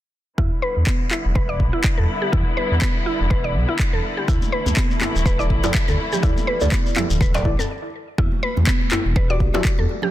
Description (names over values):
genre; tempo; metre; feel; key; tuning
afro house; 123 BPM; 4/4; swing 56% on 16ths; E minor; A4 = 440 Hz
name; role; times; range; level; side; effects
muted studio string section; sustained chords; 0.4-7.7 s; D3 to E4; -28 LUFS; left 2 dB; sidechain pumping, low-pass filter
mallet-like synth pluck; arpeggios; 0.4-10.1 s; B3 to D5; -26 LUFS; equal; chorus, sidechain pumping, tape echo
dark detuned saw bass; bass; 0.4-9.9 s; D1 to E2; -21 LUFS; equal; sidechain pumping
electronic kick drum; drums; 0.4-9.8 s; none; -20 LUFS; equal; none
electronic handclaps; drums; 0.9-9.8 s; none; -27 LUFS; equal; none
shekere; percussion; 4.3-7.7 s; none; -34 LUFS; left 4 dB; none
congas; percussion; 4.4-10.1 s; none; -30 LUFS; right 4 dB; none
djembe; percussion; 4.7-9.9 s; none; -30 LUFS; left 2 dB; none
deep mellow chord stab; stabs; 5.4-10.1 s; E4 to D5; -28 LUFS; left 1 dB; chorus, sidechain pumping, tape echo
room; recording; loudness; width
small room ambience; dense, heavily limited modern master; -18 LUFS; side -14 dB against mid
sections
0.4-8.2 A section; 8.2-10.1 B section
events
filter sweep on detuned saw bass 0.4-8.2; stop 7.7-8.2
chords
0.4 Em7; 4.3 Dsus2; 8.2 Em7